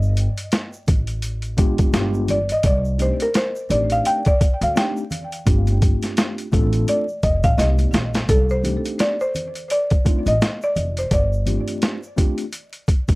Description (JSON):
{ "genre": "hip hop, jazz-hop", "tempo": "85 BPM", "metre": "4/4", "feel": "swing 59% on 16ths", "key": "C dorian", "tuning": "A4 = 439 Hz", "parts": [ { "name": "upright bass", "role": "bass", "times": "0.0-13.2 s", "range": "F1 to D2", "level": "-21 LUFS", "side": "equal", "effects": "tube saturation" }, { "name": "tube shaker and congas", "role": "percussion", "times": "0.0-13.2 s", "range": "none", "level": "-34 LUFS", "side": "right 1 dB", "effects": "none" }, { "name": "boom bap sampler-style drum kit", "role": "drums", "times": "0.2-13.2 s", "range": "hi-hat, kick drum, snare drum", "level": "-19 LUFS", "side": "equal", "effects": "overdrive" }, { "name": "mellow tine electric piano", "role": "accompaniment", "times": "1.6-12.4 s", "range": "Ab3 to A4", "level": "-25 LUFS", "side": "left 1 dB", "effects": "medium stereo tremolo" }, { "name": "buzzing marimba with medium mallets", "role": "melody", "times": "2.3-13.2 s", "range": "A4 to G5", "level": "-22 LUFS", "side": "equal", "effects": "tape echo" } ], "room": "little or no reverb", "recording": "dry, gritty hardware recording, vinyl crackle", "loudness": "-17 LUFS", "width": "side -22 dB against mid", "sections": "0.0-8.3 A section; 8.3-13.2 B section", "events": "marimba solo 0.0-8.3; drum fill 7.6-8.3", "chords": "0.0 Gsus2; 1.9 G7b9; 2.6 Cm69; 5.5 G9sus4; 7.6 Cm7; 8.3 Cm69; 11.1 G9sus4" }